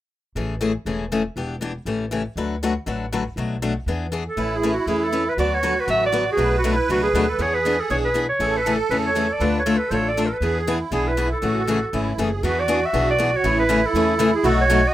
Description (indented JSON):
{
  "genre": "acoustic string swing (jazz manouche)",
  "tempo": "238 BPM",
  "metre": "4/4",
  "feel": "swing 56% on 8ths",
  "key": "A major",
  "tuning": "A4 = 441 Hz",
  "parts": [
    { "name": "picked steel-string acoustic guitar", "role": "accompaniment", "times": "0.4-14.8 s", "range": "B2 to B4", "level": "-23 LUFS", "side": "left 4 dB", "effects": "none" },
    { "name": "upright bass", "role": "bass", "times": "0.4-14.8 s", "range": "E1 to E2", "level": "-27 LUFS", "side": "equal", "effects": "none" },
    { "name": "clear clarinet", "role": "melody", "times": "4.3-14.9 s", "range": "E4 to E5", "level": "-22 LUFS", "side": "right 1 dB", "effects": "none" },
    { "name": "musette accordion", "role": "second line", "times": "4.4-14.9 s", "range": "E4 to B4", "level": "-25 LUFS", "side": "right 5 dB", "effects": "none" }
  ],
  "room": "light reverb",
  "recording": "rough home demo mix",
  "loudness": "-19 LUFS",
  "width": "side -13 dB against mid",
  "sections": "0.4-4.4 A section; 4.4-12.4 B section; 12.4-14.9 C section",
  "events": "none",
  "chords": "0.4 Amaj7; 1.4 Em7; 1.9 A7; 2.4 D6; 3.4 Bm7; 3.9 E7; 4.4 Aadd9; 5.4 D6; 6.4 Bm7; 7.4 E7; 8.4 Amaj7; 9.4 Dm; 10.4 E7; 11.4 Amaj7; 12.4 E7; 13.4 Amaj7"
}